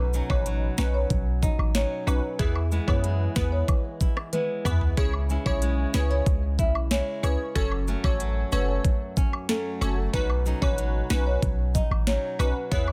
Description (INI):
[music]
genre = dancehall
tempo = 93 BPM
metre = 4/4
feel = straight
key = unclear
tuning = A4 = 440 Hz
[part]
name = flamenco guitar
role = arpeggios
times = 0.0-12.9 s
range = F#2 to E4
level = -37 LUFS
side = equal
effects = none
[part]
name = warm 808-style bass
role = bass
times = 0.0-12.9 s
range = F#1 to F#2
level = -28 LUFS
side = equal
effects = none
[part]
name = cabasa and woodblock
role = percussion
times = 0.1-12.9 s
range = none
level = -39 LUFS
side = equal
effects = none
[part]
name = marimba with medium mallets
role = melody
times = 0.3-12.8 s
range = G#4 to E5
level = -34 LUFS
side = equal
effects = tape echo
[part]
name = wavetable chord stab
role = accompaniment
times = 0.3-12.9 s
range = B3 to C#5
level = -35 LUFS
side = equal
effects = none
[part]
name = island pop drum kit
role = drums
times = 0.3-12.9 s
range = hi-hat, kick drum, rim click, snare drum, toms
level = -28 LUFS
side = equal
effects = overdrive
[sound]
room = studio reverb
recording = dense, heavily limited modern master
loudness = -25 LUFS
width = mono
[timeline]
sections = 0.0-12.9 A section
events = drum fill 4.3-5.0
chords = 0.0 Badd9; 2.4 E; 5.0 C#m; 7.6 F#m; 10.1 Badd9